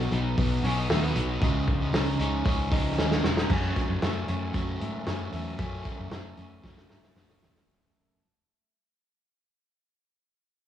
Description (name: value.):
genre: jangly indie pop.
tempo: 115 BPM.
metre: 4/4.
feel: straight.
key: F# dorian.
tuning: A4 = 440 Hz.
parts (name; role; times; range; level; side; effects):
crunchy overdriven guitar; accompaniment; 0.0-8.2 s; F#2 to D#4; -33 LUFS; right 6 dB; cassette tape.
clean electric guitar; arpeggios; 0.0-8.2 s; F#2 to D#4; -31 LUFS; left 4 dB; cassette tape, tape echo.
vintage muted fingered electric bass; bass; 0.0-7.6 s; E1 to G#2; -31 LUFS; equal; none.
loose indie drum kit; drums; 0.1-7.7 s; crash cymbal, hi-hat, kick drum, snare drum; -29 LUFS; equal; cassette tape.
room: light reverb, studio ambience.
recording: home recording on cassette.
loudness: -25 LUFS.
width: side -10 dB against mid.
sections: 0.0-3.5 A section; 3.5-7.7 B section.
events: drum fill 3.0-3.5, 6.6-7.7; fade-out 3.5-7.7.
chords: 0.0 B; 1.4 C#sus2; 3.5 F#m.